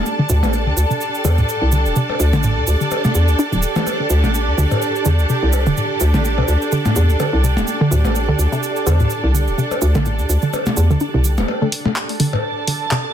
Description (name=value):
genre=minimal techno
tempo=126 BPM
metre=4/4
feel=swing 56% on 16ths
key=unclear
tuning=A4 = 440 Hz
part: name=bubbling stepped-filter texture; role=texture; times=0.0-13.1 s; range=G4 to A4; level=-29 LUFS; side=right 8 dB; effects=chorus, built-in reverb
part: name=dark studio string section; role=texture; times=0.0-13.1 s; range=D4 to A5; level=-22 LUFS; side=equal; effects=none
part: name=cabasa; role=percussion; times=0.1-11.5 s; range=none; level=-28 LUFS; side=right 7 dB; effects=none
part: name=hollow square pluck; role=riff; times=0.2-13.0 s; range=A2 to D4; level=-21 LUFS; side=equal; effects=chorus
part: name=hollow knocking FM bass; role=bass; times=0.3-11.4 s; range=D1 to E2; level=-16 LUFS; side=equal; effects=none
part: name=percussion blips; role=percussion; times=0.4-12.4 s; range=none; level=-23 LUFS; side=left 2 dB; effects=ping-pong delay
part: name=wavetable chord stab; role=stabs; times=11.6-11.9 s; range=A3 to A4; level=-23 LUFS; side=left 7 dB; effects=ping-pong delay
part: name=punchy analog drum machine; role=drums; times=11.7-13.0 s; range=handclaps, hi-hat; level=-22 LUFS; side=equal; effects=none
room=light reverb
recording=dense, heavily limited modern master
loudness=-15 LUFS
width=side -10 dB against mid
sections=0.0-11.5 A section; 11.5-13.1 B section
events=build-up 11.5-13.1; filter sweep on synth stab 11.5-13.1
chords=0.0 D5